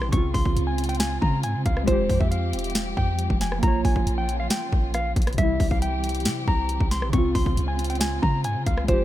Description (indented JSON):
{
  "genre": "hip hop, trap",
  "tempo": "137 BPM",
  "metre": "4/4",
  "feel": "half-time",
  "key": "unclear",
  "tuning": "A4 = 437 Hz",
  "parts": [
    { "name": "mellow electric guitar", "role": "melody", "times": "0.0-9.0 s", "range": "C5 to Db6", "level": "-29 LUFS", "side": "left 1 dB", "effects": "low-pass filter, digital delay" },
    { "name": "warbly lo-fi synth keys", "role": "accompaniment", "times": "0.0-9.0 s", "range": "C3 to Db5", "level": "-29 LUFS", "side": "equal", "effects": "chorus, low-pass filter" },
    { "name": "dark studio string section", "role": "sustained chords", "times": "0.0-9.0 s", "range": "Db3 to G4", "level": "-33 LUFS", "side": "right 2 dB", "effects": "none" },
    { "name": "clean 808-style bass", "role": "bass", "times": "0.0-9.0 s", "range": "E1 to Db3", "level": "-26 LUFS", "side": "equal", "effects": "none" },
    { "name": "trap drum kit", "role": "drums", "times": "0.0-9.0 s", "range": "hi-hat, kick drum, rim click, snare drum", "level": "-24 LUFS", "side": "equal", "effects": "none" }
  ],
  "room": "little or no reverb",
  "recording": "none",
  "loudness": "-21 LUFS",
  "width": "side -13 dB against mid",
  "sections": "0.0-9.0 A section",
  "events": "none",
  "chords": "0.1 Dbmaj7; 1.9 Fmadd9; 3.6 Bbm; 5.4 C; 7.1 Dbmaj7"
}